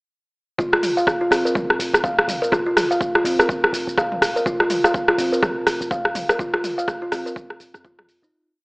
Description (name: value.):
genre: afro house.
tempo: 124 BPM.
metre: 4/4.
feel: swing 59% on 16ths.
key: F minor.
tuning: A4 = 440 Hz.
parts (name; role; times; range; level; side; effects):
kalimba; arpeggios; 0.6-8.3 s; C4 to F5; -21 LUFS; equal; sidechain pumping, tape echo.
warm 808-style bass; bass; 0.6-8.3 s; Eb1 to F2; -37 LUFS; equal; tube saturation, sidechain pumping.
deep house drum kit; drums; 0.6-8.3 s; hi-hat, rim click, shaker, toms; -20 LUFS; equal; overdrive, studio reverb.
electronic kick drum; drums; 0.6-8.0 s; none; -27 LUFS; equal; overdrive, studio reverb.
room: light reverb.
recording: dry, gritty hardware recording, AM radio sound.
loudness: -17 LUFS.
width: side -32 dB against mid.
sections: 0.6-8.3 drop.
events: drop 0.6-8.3; fade-out 5.7-8.3.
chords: none.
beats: | 0.59 1.07 1.55 2.04 | 2.52 3.01 3.49 3.98 | 4.46 4.94 5.43 5.91 | 6.39 6.88 7.36 7.84.